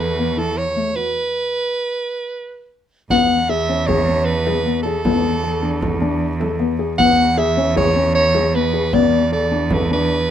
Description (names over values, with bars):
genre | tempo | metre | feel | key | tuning
contemporary instrumental, chamber music in an uneven meter | 154 BPM | 5/4 | straight | unclear | A4 = 437 Hz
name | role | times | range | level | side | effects
breathy soprano saxophone | melody | 0.0-10.3 s | A4 to F#5 | -19 LUFS | right 2 dB | none
felt-muted upright piano | arpeggios | 0.0-10.2 s | A3 to A4 | -20 LUFS | left 6 dB | none
clear cello | bass | 0.0-10.3 s | E2 | -22 LUFS | right 3 dB | none
frame drum | percussion | 3.1-9.9 s | none | -25 LUFS | right 1 dB | none
room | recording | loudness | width
light reverb | none | -16 LUFS | side -10 dB against mid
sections
0.0-3.1 A section; 3.1-10.3 B section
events
stop 1.2-3.1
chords
0.0 Esus4; 1.2 N.C.; 3.1 C#m7/E; 5.1 E7sus4; 7.0 C#m7/E; 8.9 E7sus4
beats
0.38 0.77 | 1.16 1.55 1.94 2.33 2.72 | 3.11 3.50 3.88 4.27 4.66 | 5.05 5.44 5.83 6.22 6.61 | 6.99 7.38 7.77 8.16 8.55 | 8.94 9.32 9.71 10.10